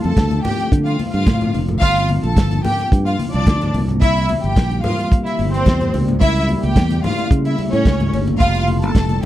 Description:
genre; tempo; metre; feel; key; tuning
disco; 109 BPM; 4/4; straight; G minor; A4 = 440 Hz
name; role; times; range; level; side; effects
rich symphonic string section; second line; 0.0-9.3 s; C4 to A5; -21 LUFS; equal; none
deep dark ambient pad; sustained chords; 0.0-9.3 s; C3 to F4; -23 LUFS; left 1 dB; chorus, built-in reverb
fingered electric bass; bass; 0.0-9.2 s; F1 to D3; -19 LUFS; equal; none
warm soul drum kit; drums; 0.0-9.3 s; hi-hat, kick drum, snare drum; -14 LUFS; equal; none
congas; percussion; 0.2-9.3 s; none; -25 LUFS; left 2 dB; none
room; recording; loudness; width
little or no reverb; dry, close 1970s-style studio recording; -14 LUFS; side -14 dB against mid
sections
0.0-9.3 A section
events
none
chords
0.0 Dm7; 1.8 Gm7; 3.7 C7; 5.9 A7b9/C#; 8.4 F13

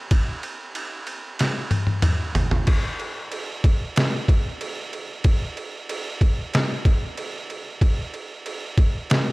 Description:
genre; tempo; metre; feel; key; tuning
metal; 94 BPM; 4/4; straight; none; none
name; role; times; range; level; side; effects
trip hop sampler-style drum kit; drums; 0.1-9.3 s; crash cymbal, kick drum, ride cymbal, snare drum, toms; -21 LUFS; equal; overdrive
room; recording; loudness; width
little or no reverb; dark, warm production; -21 LUFS; side -23 dB against mid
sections
0.0-2.7 A section; 2.7-9.3 B section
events
drum fill 1.4-2.7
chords
none

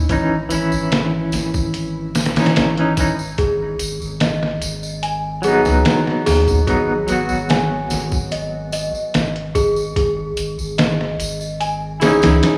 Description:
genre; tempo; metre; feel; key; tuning
trip hop; 73 BPM; 4/4; straight; G# minor; A4 = 439 Hz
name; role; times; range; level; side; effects
clean electric guitar; accompaniment; 0.0-12.6 s; E3 to F#4; -22 LUFS; equal; tremolo, tape echo
soft dub sub bass; bass; 0.0-12.4 s; G#1 to D#2; -26 LUFS; equal; none
trip hop sampler-style drum kit; drums; 0.1-12.6 s; hi-hat, kick drum, snare drum; -22 LUFS; equal; none
tambourine; percussion; 0.1-12.6 s; none; -34 LUFS; equal; none
worn celesta; arpeggios; 3.4-12.6 s; G#4 to G#5; -23 LUFS; equal; vintage 12-bit sampler grit, tape echo
room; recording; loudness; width
light reverb; rough home demo mix, studio reverb; -19 LUFS; mono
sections
0.0-12.6 A section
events
none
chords
0.0 C#madd9/G#; 3.4 G#m7; 10.0 C#madd9/G#

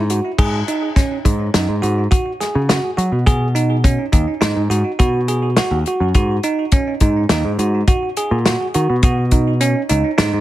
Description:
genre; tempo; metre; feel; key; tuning
progressive instrumental, band music in an uneven meter; 104 BPM; 5/4; straight; G# minor; A4 = 439 Hz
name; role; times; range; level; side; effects
picked electric bass; bass; 0.0-10.4 s; C#2 to F#3; -18 LUFS; equal; none
bell-like tine electric piano; arpeggios; 0.1-10.4 s; C#4 to G#4; -20 LUFS; right 3 dB; tape echo
warm soul drum kit; drums; 0.1-10.3 s; crash cymbal, hi-hat, kick drum, snare drum; -16 LUFS; left 1 dB; none
room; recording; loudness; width
studio reverb; none; -14 LUFS; side -14 dB against mid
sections
0.4-10.4 A section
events
none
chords
0.4 G#m7; 6.2 F#sus4

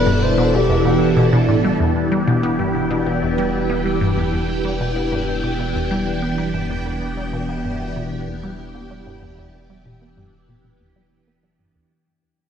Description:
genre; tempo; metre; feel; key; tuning
ambient, sequencer-driven space music; 95 BPM; 4/4; straight; E minor; A4 = 435 Hz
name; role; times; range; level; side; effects
pulse-width lead; melody; 0.0-1.5 s; G4 to C5; -24 LUFS; equal; chorus, cassette tape, analog delay
phased string machine; sustained chords; 0.0-11.9 s; B2 to A4; -20 LUFS; equal; ensemble chorus, phaser
warm sub bass; bass; 0.0-11.9 s; E1; -29 LUFS; equal; none
resonant blip pluck; riff; 0.1-11.9 s; E2 to B3; -21 LUFS; equal; phaser, analog delay
bubbling stepped-filter texture; texture; 1.8-11.9 s; G5; -33 LUFS; right 2 dB; chorus, built-in reverb
room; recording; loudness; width
wet plate reverb, RT60 3.6 s; dreamy mix soaked in reverb; -17 LUFS; side -8 dB against mid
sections
0.0-1.8 A section; 1.8-11.9 B section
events
fade-out 1.8-11.9; filter sweep on synth arpeggio sound 1.8-11.9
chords
0.0 Em7

